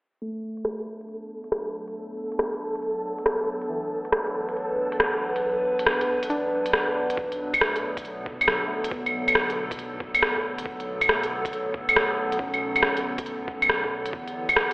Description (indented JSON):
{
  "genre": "future garage",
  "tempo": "138 BPM",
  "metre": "4/4",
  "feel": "swing 66% on 16ths",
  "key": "B minor",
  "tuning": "A4 = 440 Hz",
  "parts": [
    { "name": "muted felt-like synth keys", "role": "accompaniment", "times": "0.2-14.2 s", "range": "E3 to D4", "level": "-36 LUFS", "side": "equal", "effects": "chorus, sidechain pumping, low-pass filter, analog delay" },
    { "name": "warbly tape-like pad", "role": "sustained chords", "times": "1.2-14.7 s", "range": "D3 to B4", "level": "-29 LUFS", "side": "equal", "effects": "chorus, built-in reverb, phaser, sidechain pumping" },
    { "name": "flickering grainy texture", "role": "texture", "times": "0.9-7.2 s", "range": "A4", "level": "-33 LUFS", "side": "equal", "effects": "built-in reverb" },
    { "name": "garage drum kit", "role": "drums", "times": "0.6-14.7 s", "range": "claves, hi-hat, rim click", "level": "-23 LUFS", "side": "equal", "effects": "none" },
    { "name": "dark detuned saw bass", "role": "bass", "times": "7.2-14.7 s", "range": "B1 to E2", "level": "-42 LUFS", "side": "equal", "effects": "sidechain pumping" },
    { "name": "electronic kick drum", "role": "drums", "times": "7.2-14.6 s", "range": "none", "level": "-34 LUFS", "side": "equal", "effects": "none" }
  ],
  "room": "moderate huge ambient reverb, RT60 4.1 s",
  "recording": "played on a big sound system in a bare room, stone room reverb, low-pass filter, telephone sound",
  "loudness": "-23 LUFS",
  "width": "side -27 dB against mid",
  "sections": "0.2-7.2 A section; 7.2-14.7 B section",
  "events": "filter sweep on ambient pad 0.2-7.2; filter sweep on synth keys 0.2-7.2, 7.2-14.7; filter sweep 0.2-7.2",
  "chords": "0.2 Bm7; 14.1 Em7"
}